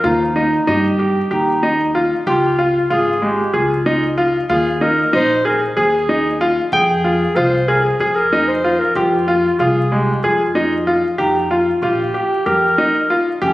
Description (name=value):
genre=contemporary instrumental, chamber music in an uneven meter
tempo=188 BPM (eighths)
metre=7/8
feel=straight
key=unclear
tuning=A4 = 438 Hz
part: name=warm clarinet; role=melody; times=0.0-13.5 s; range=Db4 to C5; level=-19 LUFS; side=equal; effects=none
part: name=bright baby grand piano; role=arpeggios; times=0.0-13.5 s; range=Ab3 to G5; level=-16 LUFS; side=equal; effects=none
part: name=upright bass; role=bass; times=0.0-13.5 s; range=Ab1 to G2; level=-23 LUFS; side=equal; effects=none
room=wet recital hall reverb, RT60 1.8 s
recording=recorded on a phone in the room, studio reverb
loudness=-14 LUFS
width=side -16 dB against mid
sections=0.0-11.2 A section; 11.2-13.5 B section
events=none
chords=0.0 Ebadd9; 2.3 Db; 4.5 Ebsus4; 6.7 Fm; 11.2 Eb (rootless)